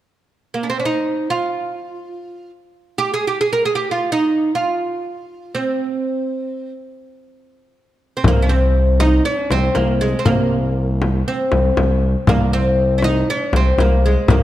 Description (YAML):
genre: Arabic maqam ensemble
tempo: free time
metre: none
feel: none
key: C maqam bayati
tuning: A4 = 440 Hz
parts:
  - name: oud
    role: melody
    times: 0.5-14.4 s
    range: Ab3 to Bb4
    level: -19 LUFS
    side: right 1 dB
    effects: none
  - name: smooth gliding synth bass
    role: bass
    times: 8.2-14.4 s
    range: C2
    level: -17 LUFS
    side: equal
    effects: none
  - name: frame drum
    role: percussion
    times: 8.2-14.4 s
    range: none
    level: -20 LUFS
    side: left 2 dB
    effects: none
room: light reverb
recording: dark, warm production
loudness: -15 LUFS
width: side -13 dB against mid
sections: 0.2-8.2 A section; 8.2-14.4 B section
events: none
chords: none